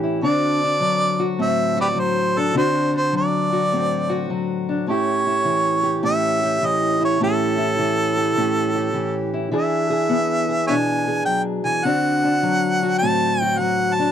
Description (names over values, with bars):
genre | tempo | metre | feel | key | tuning
acoustic country blues, solo or duo | 103 BPM | 4/4 | swing 66% on 8ths | unclear | A4 = 440 Hz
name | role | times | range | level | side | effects
fingerpicked steel-string acoustic guitar | accompaniment | 0.0-14.1 s | A2 to G#4 | -20 LUFS | left 1 dB | none
warm harmonica | melody | 0.2-14.1 s | G4 to A5 | -20 LUFS | right 1 dB | none
room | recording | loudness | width
light reverb | dry, close 1970s-style studio recording | -18 LUFS | side -9 dB against mid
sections
0.0-14.1 A section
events
none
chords
0.2 D7; 4.9 A7; 9.5 E7; 11.8 D7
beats
| 0.23 0.81 1.38 1.96 | 2.54 3.12 3.71 4.29 | 4.87 5.45 6.03 6.61 | 7.19 7.77 8.36 8.94 | 9.52 10.10 10.68 11.26 | 11.84 12.42 13.00 13.58